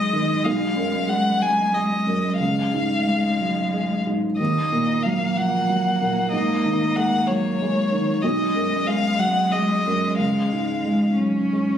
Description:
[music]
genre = neoclassical piano and strings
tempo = 62 BPM (dotted quarters)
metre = 6/8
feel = rubato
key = unclear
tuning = A4 = 440 Hz
[part]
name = rich violin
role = melody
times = 0.0-11.2 s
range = Db5 to G#5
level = -24 LUFS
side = left 2 dB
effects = none
[part]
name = warm cello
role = second line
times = 0.0-11.8 s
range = Ab3 to Db4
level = -27 LUFS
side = right 3 dB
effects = none
[part]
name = felt-muted upright piano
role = accompaniment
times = 0.0-11.8 s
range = B1 to Ab3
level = -22 LUFS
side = equal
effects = none
[sound]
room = light reverb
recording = recorded on a phone in the room, club reverb, compression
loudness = -19 LUFS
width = side -9 dB against mid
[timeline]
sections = 0.0-11.8 A section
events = none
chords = 0.5 B6; 2.4 Db; 4.4 Ebm; 6.3 Absus2; 8.2 B6; 10.2 Db

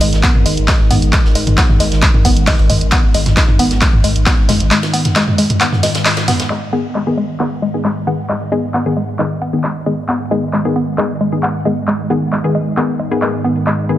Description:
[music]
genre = driving peak-time techno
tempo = 134 BPM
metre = 4/4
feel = straight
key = G# minor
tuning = A4 = 440 Hz
[part]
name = woody wave-folded pluck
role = riff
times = 0.0-13.7 s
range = G#3 to B3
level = -19 LUFS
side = equal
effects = chorus, tube saturation, sidechain pumping, tape echo
[part]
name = warm sub bass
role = bass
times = 0.0-4.7 s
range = G#1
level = -17 LUFS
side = equal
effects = sidechain pumping, low-pass filter
[part]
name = deep dark ambient pad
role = drone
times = 0.0-14.0 s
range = G#2 to D#3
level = -21 LUFS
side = equal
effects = chorus, built-in reverb, sidechain pumping
[part]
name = big rock drum kit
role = drums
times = 0.0-6.5 s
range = ride cymbal, snare drum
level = -26 LUFS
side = left 1 dB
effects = sidechain pumping on cymbals, high-pass filter on cymbals, studio reverb, high-pass filter on snare, high-pass filter on room
[part]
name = punchy analog drum machine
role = drums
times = 0.0-13.8 s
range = handclaps, hi-hat, toms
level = -17 LUFS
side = equal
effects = sidechain pumping on hats, low-pass filter on hats, studio reverb, sidechain pumping on toms, low-pass filter on toms, low-pass filter on snare
[part]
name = electronic kick drum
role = drums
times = 0.2-4.4 s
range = none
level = -14 LUFS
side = equal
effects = studio reverb
[part]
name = wavetable chord stab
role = stabs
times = 6.7-14.0 s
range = D#3 to G#4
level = -19 LUFS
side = left 2 dB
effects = sidechain pumping, digital delay
[sound]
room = light reverb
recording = none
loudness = -12 LUFS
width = side -13 dB against mid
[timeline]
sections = 0.0-6.5 A section; 6.5-14.0 B section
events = band accent 6.1; filter sweep on synth stab 6.5-14.0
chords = 0.0 G#5; 6.5 G#m

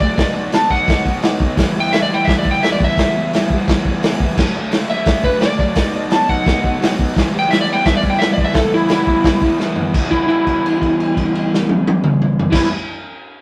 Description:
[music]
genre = garage rock duo or trio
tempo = 172 BPM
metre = 4/4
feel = straight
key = E minor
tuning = A4 = 440 Hz
[part]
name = electric slide guitar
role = melody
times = 0.0-12.7 s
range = E4 to A5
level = -20 LUFS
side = equal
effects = none
[part]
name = crunchy overdriven guitar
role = riff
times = 0.0-12.7 s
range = B2 to E4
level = -22 LUFS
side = equal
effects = none
[part]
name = vintage drum kit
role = drums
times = 0.0-12.6 s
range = crash cymbal, hi-hat, kick drum, snare drum, toms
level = -20 LUFS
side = equal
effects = none
[sound]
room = moderate stone room reverb, RT60 1.0 s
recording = rough rehearsal-room recording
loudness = -16 LUFS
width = mono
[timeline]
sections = 0.0-9.9 A section; 9.9-12.7 B section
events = drum fill 9.6-9.9; held note 9.9-12.5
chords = 0.2 B; 1.6 Em; 4.4 D; 5.8 B; 7.2 Em

